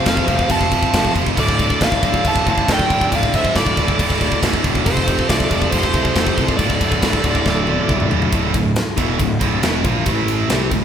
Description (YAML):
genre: heavy metal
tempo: 138 BPM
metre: 4/4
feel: straight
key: D minor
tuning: A4 = 436 Hz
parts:
  - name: smooth overdriven lead guitar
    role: melody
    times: 0.0-8.1 s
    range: C5 to A5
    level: -22 LUFS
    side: equal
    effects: none
  - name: dark smooth lead guitar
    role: second line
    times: 0.0-8.1 s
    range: A4 to F5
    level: -28 LUFS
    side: right 2 dB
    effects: overdrive
  - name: muted studio string section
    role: sustained chords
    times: 0.0-10.8 s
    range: D3 to A4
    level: -32 LUFS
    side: equal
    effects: none
  - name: heavy high-gain guitar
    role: riff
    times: 0.0-10.8 s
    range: D2 to C4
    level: -24 LUFS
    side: left 7 dB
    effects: distortion
  - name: scooped high-gain guitar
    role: riff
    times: 0.0-10.8 s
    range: D2 to C4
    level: -21 LUFS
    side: right 7 dB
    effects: distortion
  - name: fuzz picked electric bass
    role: bass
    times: 0.1-10.8 s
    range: D1 to C2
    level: -23 LUFS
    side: equal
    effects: overdrive
  - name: tight metal drum kit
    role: drums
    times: 0.1-10.8 s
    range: crash cymbal, kick drum, ride cymbal, snare drum, toms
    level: -19 LUFS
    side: equal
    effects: none
room: moderate large studio reverb, RT60 1.4 s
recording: band playing live in one room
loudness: -14 LUFS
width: side -8 dB against mid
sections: 0.0-8.3 A section; 8.3-10.8 B section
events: drum fill 7.5-8.3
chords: 0.0 F; 1.4 Dm; 4.9 F; 6.6 Dm; 10.1 A5